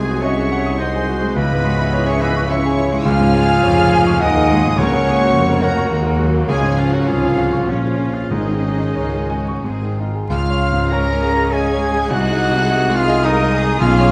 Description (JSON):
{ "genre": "classical, romantic movement for piano and orchestra", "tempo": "88-108 BPM", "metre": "3/4", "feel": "rubato", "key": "C# minor, Db major from 3.1 s", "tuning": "A4 = 441 Hz", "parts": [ { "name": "clear concert grand piano", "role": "melody", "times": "0.0-14.1 s", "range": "Cb2 to D#6", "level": "-22 LUFS", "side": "equal", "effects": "none" }, { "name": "rich studio violin section", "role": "melody", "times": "0.0-14.1 s", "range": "Db5 to Bb6", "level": "-32 LUFS", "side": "equal", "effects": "none" }, { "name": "dark clarinet", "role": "second line", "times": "0.0-14.1 s", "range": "Db4 to F5", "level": "-28 LUFS", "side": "equal", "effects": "none" }, { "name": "rich studio violin section", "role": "second line", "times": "0.0-14.1 s", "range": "Db4 to Bb5", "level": "-32 LUFS", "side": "equal", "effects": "none" }, { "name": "silver concert flute", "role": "second line", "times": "0.0-14.1 s", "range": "F4 to Bb5", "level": "-27 LUFS", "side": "equal", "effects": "none" }, { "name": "warm oboe", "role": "second line", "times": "0.0-14.1 s", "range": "Db4 to Bb5", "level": "-29 LUFS", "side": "equal", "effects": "none" }, { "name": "rich studio viola section", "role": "accompaniment", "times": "0.0-14.1 s", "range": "Eb3 to Ab4", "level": "-28 LUFS", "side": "equal", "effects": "none" }, { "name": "mellow French horn section", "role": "sustained chords", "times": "0.0-14.1 s", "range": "Db3 to F4", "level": "-26 LUFS", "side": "equal", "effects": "none" }, { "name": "mellow tuba", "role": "bass", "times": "0.0-14.1 s", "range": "F1 to Eb2", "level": "-26 LUFS", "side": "equal", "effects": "none" }, { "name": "rich chamber double bass section", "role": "bass", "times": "0.0-14.1 s", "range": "Ab1 to F2", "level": "-26 LUFS", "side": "equal", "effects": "none" }, { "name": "rich studio cello section", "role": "bass", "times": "0.0-14.1 s", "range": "Db4 to Bb4", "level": "-31 LUFS", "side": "equal", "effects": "none" }, { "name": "timpani", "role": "percussion", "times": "4.8-5.6, 8.3-9.3 s", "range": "Ab2 to Db3", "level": "-31 LUFS", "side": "equal", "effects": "none" }, { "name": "warm trumpet", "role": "stabs", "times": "10.3-14.1 s", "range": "Eb4 to Bb4", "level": "-26 LUFS", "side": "equal", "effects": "none" } ], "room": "wet recital hall reverb, RT60 1.5 s", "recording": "vinyl crackle", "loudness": "-17 LUFS", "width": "mono", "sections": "0.0-10.3 A section; 10.3-14.1 B section", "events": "none", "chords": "0.0 G#7/B#; 1.4 C#m; 3.1 Db; 4.8 Gb; 6.5 Db; 7.7 Bbm; 8.3 Absus4; 9.6 Ab; 10.3 Db; 12.1 Ab7/C", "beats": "0.22 0.79 | 1.35 1.92 2.50 | 3.06 3.63 4.20 | 4.77 5.34 5.91 | 6.49 7.08 7.67 | 8.30 8.97 9.64 | 10.30 10.91 11.52 | 12.10 12.68 13.25 | 13.80" }